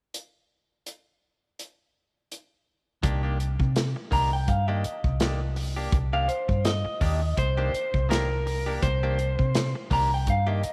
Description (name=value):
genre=straight-eighth soul blues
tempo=83 BPM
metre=4/4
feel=swing 56% on 16ths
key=C minor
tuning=A4 = 442 Hz
part: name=warm soul drum kit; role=drums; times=0.1-10.7 s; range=hi-hat, kick drum, snare drum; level=-31 LUFS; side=equal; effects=none
part: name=direct-recorded clean electric guitar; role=stabs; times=3.0-10.7 s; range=Eb3 to G4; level=-38 LUFS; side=equal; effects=none
part: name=vintage muted fingered electric bass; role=bass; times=3.0-10.7 s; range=C2 to C3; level=-29 LUFS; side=equal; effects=none
part: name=electric guitar through a small old amp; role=melody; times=4.1-10.7 s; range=C5 to Bb5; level=-31 LUFS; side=equal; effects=slapback echo
part: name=electric slide guitar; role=second line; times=7.4-9.7 s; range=Bb4 to C5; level=-32 LUFS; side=equal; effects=none
room=light reverb, small room ambience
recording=none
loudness=-26 LUFS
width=mono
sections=0.1-3.0 A section; 3.0-10.7 B section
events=none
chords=0.1 N.C.; 3.0 Cm9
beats=| 0.14 0.87 1.59 2.31 | 3.04 3.76 4.48 5.21 | 5.93 6.65 7.38 8.10 | 8.82 9.55 10.27